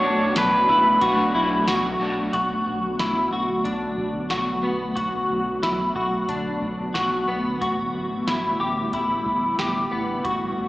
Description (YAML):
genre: dream pop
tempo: 91 BPM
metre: 4/4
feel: straight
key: B minor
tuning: A4 = 441 Hz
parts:
  - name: pedal steel guitar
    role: melody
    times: 0.0-1.3 s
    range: B4 to C#5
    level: -20 LUFS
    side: equal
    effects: tape echo
  - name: crunchy overdriven guitar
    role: accompaniment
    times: 0.0-2.9 s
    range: B2 to F#4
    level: -29 LUFS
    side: equal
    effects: harmonic tremolo, wide subtle chorus
  - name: ethereal airy pad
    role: sustained chords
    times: 0.0-10.7 s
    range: D3 to F#4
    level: -26 LUFS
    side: equal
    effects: ensemble chorus, built-in reverb
  - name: clean electric guitar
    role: arpeggios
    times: 0.0-10.7 s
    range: B3 to G4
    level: -24 LUFS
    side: left 1 dB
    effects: ensemble chorus, tape echo
  - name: round analog bass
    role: bass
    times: 0.2-10.7 s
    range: A1 to C#2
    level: -37 LUFS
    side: equal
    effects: none
  - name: soft vintage rhythm box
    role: drums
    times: 0.4-10.4 s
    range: hi-hat, kick drum, snare drum, tambourine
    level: -30 LUFS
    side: equal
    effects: none
room: wet scoring stage reverb, RT60 1.9 s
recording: played on a big sound system in a bare room, large studio reverb, small speaker sound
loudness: -20 LUFS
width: side -18 dB against mid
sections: 0.0-2.3 A section; 2.3-10.7 B section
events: none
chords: 0.0 Bm7; 7.6 A9sus4